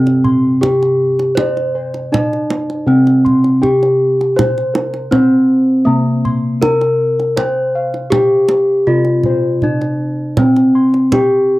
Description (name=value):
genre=Javanese gamelan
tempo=80 BPM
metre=4/4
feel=straight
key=C slendro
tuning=A4 = 440 Hz
part: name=gamelan-type bronze metallophone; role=melody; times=0.0-11.6 s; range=Bb3-25c to C5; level=-13 LUFS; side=equal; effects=cassette tape
part: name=gamelan-type bossed gongs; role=arpeggios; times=0.0-11.5 s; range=Bb4-25c to C6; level=-25 LUFS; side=left 2 dB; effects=plate reverb
part: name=gamelan-type bossed gongs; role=bass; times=0.0-11.6 s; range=C3 to C5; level=-19 LUFS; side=left 1 dB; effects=none
part: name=kendang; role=percussion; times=0.1-11.3 s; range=none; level=-20 LUFS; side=right 2 dB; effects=none
room=wet small room reverb, RT60 0.5 s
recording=home recording on cassette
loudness=-11 LUFS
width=side -18 dB against mid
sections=0.0-11.6 A section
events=none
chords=none